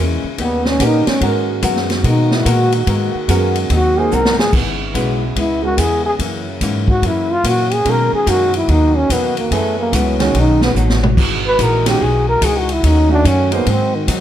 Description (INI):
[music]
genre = jazz, big band swing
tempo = 144 BPM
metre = 4/4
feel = swing 65% on 8ths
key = G# minor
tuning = A4 = 439 Hz
[part]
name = archtop guitar, miked and amplified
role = accompaniment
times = 0.0-14.2 s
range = F#2 to A#4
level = -24 LUFS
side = left 5 dB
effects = none
[part]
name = warm trombone section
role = sustained chords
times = 0.0-14.2 s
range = C#3 to F#4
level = -26 LUFS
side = equal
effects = none
[part]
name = upright bass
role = bass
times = 0.0-14.2 s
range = G#1 to B#2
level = -18 LUFS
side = equal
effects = none
[part]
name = breathy trombone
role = melody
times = 0.4-14.2 s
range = D#3 to B4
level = -16 LUFS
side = equal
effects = none
[part]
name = swinging big-band drum kit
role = drums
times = 0.4-14.2 s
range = crash cymbal, hi-hat, kick drum, ride cymbal, snare drum, toms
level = -21 LUFS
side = equal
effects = none
[part]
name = warm baby grand piano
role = accompaniment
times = 0.8-13.7 s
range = D#3 to B#4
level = -22 LUFS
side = right 6 dB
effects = none
[sound]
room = light reverb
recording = none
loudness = -13 LUFS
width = side -11 dB against mid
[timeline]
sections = 0.0-4.5 A section; 4.5-14.2 A section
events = trombone solo 0.0-14.2; drum fill 4.1-4.5, 10.8-11.2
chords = 0.4 D#7b13; 1.2 G#m9; 3.7 G#7; 4.5 C#m7; 6.2 F#7; 7.9 Bmaj7; 9.5 F#m7; 10.3 B7; 11.2 Emaj9; 12.8 D#m7b5; 13.7 G#7